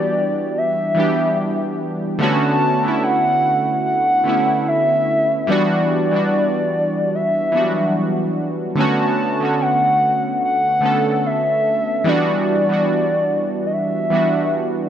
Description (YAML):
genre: R&B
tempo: 73 BPM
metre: 4/4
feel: swing 58% on 16ths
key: unclear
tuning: A4 = 440 Hz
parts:
  - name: hollow clarinet-like synth lead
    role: melody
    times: 0.0-14.9 s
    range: D5 to A5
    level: -18 LUFS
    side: left 1 dB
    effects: chorus
  - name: warm analog keys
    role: accompaniment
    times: 0.0-14.9 s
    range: D3 to A4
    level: -19 LUFS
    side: right 1 dB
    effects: chorus
room: light reverb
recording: none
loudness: -16 LUFS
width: side -9 dB against mid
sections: 0.0-14.9 A section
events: none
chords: 0.0 Em9; 2.2 Bm9; 5.5 Em9; 8.8 Bm9; 12.1 Em9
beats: 0.56 1.38 | 2.21 3.03 3.85 4.67 | 5.49 6.32 7.14 7.96 | 8.78 9.60 10.43 11.25 | 12.07 12.89 13.71 14.53